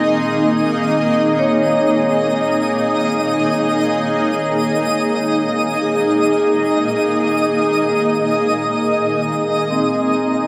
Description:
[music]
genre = ambient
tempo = free time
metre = none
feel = none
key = unclear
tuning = A4 = 438 Hz
[part]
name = granular cloud pad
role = sustained chords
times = 0.0-10.5 s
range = Bb3 to Eb5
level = -19 LUFS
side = equal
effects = built-in reverb, shimmer reverb
[part]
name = vibraphone with medium hard mallets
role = arpeggios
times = 0.0-10.5 s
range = C4 to C6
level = -23 LUFS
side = equal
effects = tape echo, shimmer reverb
[part]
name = analog drone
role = drone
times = 0.0-10.5 s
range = Eb3 to Bb3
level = -35 LUFS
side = equal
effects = chorus
[part]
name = twinkling granular texture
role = texture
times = 0.0-10.5 s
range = Eb5 to Eb6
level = -25 LUFS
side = equal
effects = built-in reverb, shimmer reverb
[sound]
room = wet cathedral reverb, RT60 4.8 s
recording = none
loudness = -17 LUFS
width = mono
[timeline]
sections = 0.0-10.5 A section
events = fade-out on synth drone 0.0-10.5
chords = 0.0 Eb5

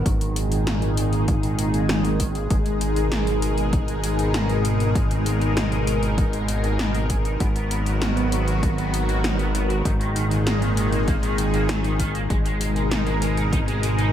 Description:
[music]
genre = synthwave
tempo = 98 BPM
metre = 4/4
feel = straight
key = G# minor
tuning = A4 = 440 Hz
[part]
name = lush unison pad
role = sustained chords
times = 0.0-14.1 s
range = A#2 to A#4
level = -25 LUFS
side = equal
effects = chorus, phaser, sidechain pumping
[part]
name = fat analog bass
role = bass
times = 0.0-14.1 s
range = G#1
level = -23 LUFS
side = equal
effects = sidechain pumping
[part]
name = crunchy overdriven guitar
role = riff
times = 0.1-14.1 s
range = D#3 to G#4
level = -32 LUFS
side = right 2 dB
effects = ensemble chorus, low-pass filter, tape echo
[part]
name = 80s electronic pad drums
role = drums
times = 0.1-14.1 s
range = hi-hat, snare drum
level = -28 LUFS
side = left 1 dB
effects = none
[part]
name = electronic kick drum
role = drums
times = 0.1-13.6 s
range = none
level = -23 LUFS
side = equal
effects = none
[sound]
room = light reverb, digital ambience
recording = none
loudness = -20 LUFS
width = side -10 dB against mid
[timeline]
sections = 0.0-14.1 A section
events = filter sweep on overdriven electric guitar 0.0-14.1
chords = 0.1 D#sus4/G#; 2.5 G#madd9; 7.4 Bmaj7/G#; 9.9 D#sus4/G#; 12.3 G#madd9

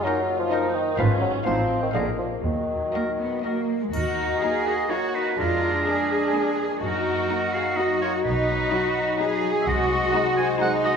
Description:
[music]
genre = cinematic, playful, whimsical film cue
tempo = 126 BPM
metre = 3/4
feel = straight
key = Eb minor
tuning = A4 = 440 Hz
[part]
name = clear clarinet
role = second line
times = 0.0-10.8 s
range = Eb4 to Ab4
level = -32 LUFS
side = left 2 dB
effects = none
[part]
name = clear oboe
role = second line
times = 0.0-11.0 s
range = Bb4 to G#5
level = -29 LUFS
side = right 1 dB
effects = none
[part]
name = rich symphonic violin section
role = second line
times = 0.0-10.9 s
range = Cb4 to C5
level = -32 LUFS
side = left 1 dB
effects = none
[part]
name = mellow bassoon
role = accompaniment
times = 0.0-11.0 s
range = D3 to Eb4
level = -29 LUFS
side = right 1 dB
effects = none
[part]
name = rich studio viola section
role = accompaniment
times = 0.0-11.0 s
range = Gb3 to F4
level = -34 LUFS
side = right 2 dB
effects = none
[part]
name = concert harp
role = arpeggios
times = 0.0-11.0 s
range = F2 to Bb4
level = -31 LUFS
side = left 7 dB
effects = none
[part]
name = rich studio violin section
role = melody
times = 0.1-11.0 s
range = D4 to F5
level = -34 LUFS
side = left 5 dB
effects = none
[part]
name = warm French horn section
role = sustained chords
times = 0.1-11.0 s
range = Gb3 to C5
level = -33 LUFS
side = left 3 dB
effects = none
[part]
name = dark studio double bass section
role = bass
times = 1.0-10.0 s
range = Ab1 to Gb2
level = -30 LUFS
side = right 2 dB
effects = none
[part]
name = rich studio cello section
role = bass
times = 1.0-11.0 s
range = Eb2 to Ab4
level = -27 LUFS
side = right 2 dB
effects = none
[part]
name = triangle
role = percussion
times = 3.9-4.9 s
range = none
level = -49 LUFS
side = left 3 dB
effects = none
[sound]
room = wet concert hall reverb, RT60 1.9 s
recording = minimal, uncompressed stereo recording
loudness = -21 LUFS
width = side -6 dB against mid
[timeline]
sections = 0.0-3.9 A section; 3.9-11.0 B section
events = none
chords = 0.0 Ebm/Gb; 1.0 Fdim/Ab; 1.5 F7/A; 2.0 Bb7; 2.4 Ebm; 5.4 Bb7/F; 6.8 Ebm/Gb; 8.2 B; 9.7 G#7/B#

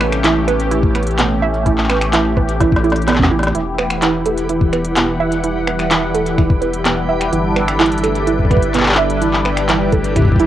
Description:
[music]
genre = IDM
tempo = 127 BPM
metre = 4/4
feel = straight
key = E dorian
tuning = A4 = 440 Hz
[part]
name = phased analog pad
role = sustained chords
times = 0.0-10.5 s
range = E3 to F#5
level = -19 LUFS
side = left 1 dB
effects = phaser, chorus, cassette tape
[part]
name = warbly dusty pluck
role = arpeggios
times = 0.0-10.4 s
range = B3 to E5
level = -18 LUFS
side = right 6 dB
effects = chorus, cassette tape, analog delay
[part]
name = round analog bass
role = bass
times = 0.0-10.5 s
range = E1 to A1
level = -22 LUFS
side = left 1 dB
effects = none
[part]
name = organic electronic drum kit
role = drums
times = 0.0-10.5 s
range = finger snaps, handclaps, hi-hat, snare drum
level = -19 LUFS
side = left 1 dB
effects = cassette tape
[part]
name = electronic kick drum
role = drums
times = 0.8-10.4 s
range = none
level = -14 LUFS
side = left 1 dB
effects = cassette tape
[part]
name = backwards swelling texture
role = texture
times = 4.4-10.5 s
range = G3 to G4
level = -27 LUFS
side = equal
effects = built-in reverb, cassette tape
[sound]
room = light reverb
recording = home recording on cassette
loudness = -13 LUFS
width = side -12 dB against mid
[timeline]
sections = 0.0-10.5 A section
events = drum fill 2.6-3.5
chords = 0.0 A7; 3.5 Emadd9; 7.3 G6

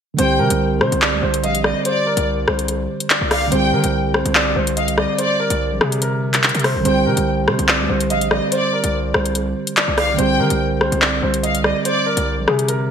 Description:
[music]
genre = hip hop, drill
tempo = 144 BPM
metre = 4/4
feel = half-time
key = unclear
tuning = A4 = 441 Hz
[part]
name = mellow tine electric piano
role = accompaniment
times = 0.1-12.9 s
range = D3 to C5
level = -22 LUFS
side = right 5 dB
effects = analog chorus
[part]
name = warm upright piano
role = melody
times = 0.2-12.9 s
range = Ab4 to Eb5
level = -22 LUFS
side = left 1 dB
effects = lush chorus, ping-pong delay
[part]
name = warm studio violin section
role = second line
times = 0.2-12.2 s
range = D5 to G5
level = -23 LUFS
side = left 2 dB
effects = ping-pong delay
[part]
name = distorted 808-style bass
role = bass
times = 0.2-12.9 s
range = Bb1 to Eb3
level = -22 LUFS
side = left 1 dB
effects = distortion
[part]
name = drill drum kit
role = drums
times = 0.2-12.8 s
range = handclaps, hi-hat, rim click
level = -19 LUFS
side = left 1 dB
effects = gated reverb
[sound]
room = light reverb, small room ambience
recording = bright 1980s-style digital production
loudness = -15 LUFS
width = side -7 dB against mid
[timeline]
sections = 0.2-12.9 A section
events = none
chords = 0.2 Csus2

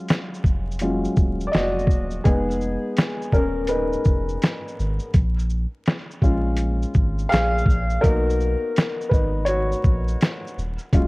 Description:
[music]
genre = lo-fi hip hop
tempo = 83 BPM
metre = 4/4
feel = swing 65% on 16ths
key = Eb minor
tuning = A4 = 436 Hz
[part]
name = dark upright piano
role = accompaniment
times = 0.0-11.1 s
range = Gb3 to F5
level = -24 LUFS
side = left 1 dB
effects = none
[part]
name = lo-fi sampler-style drum kit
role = drums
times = 0.1-11.1 s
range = hi-hat, kick drum, shaker, snare drum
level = -20 LUFS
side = equal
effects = none
[part]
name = soft dub sub bass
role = bass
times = 0.4-11.1 s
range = Eb1 to Cb2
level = -24 LUFS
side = equal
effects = tube saturation
[sound]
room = light reverb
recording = worn, warbling old tape, cassette tape, vinyl crackle, warbly pitch drift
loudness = -19 LUFS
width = side -23 dB against mid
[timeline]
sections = 0.0-11.1 A section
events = upright piano solo 0.0-11.1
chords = 0.0 Ebm11; 2.3 Fm7b5; 5.1 Bbm7; 8.0 Abm9; 10.6 Ebm11

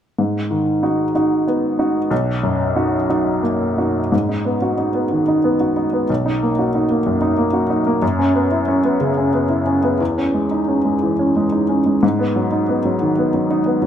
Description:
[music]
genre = classical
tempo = 61 BPM (dotted quarters)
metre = 6/8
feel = rubato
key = G# minor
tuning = A4 = 440 Hz
[part]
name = clear upright piano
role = accompaniment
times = 0.2-13.9 s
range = B1 to F#4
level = -15 LUFS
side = equal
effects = none
[sound]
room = moderate large studio reverb, RT60 1.2 s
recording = none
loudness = -16 LUFS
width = side -9 dB against mid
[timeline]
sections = 0.2-4.1 A section; 4.1-13.9 B section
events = none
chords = 0.2 G#m7; 2.1 Bmaj7; 4.1 G#m7; 6.1 Bmaj7; 8.0 F#7sus4; 10.0 C#madd9/E; 12.0 G#m7

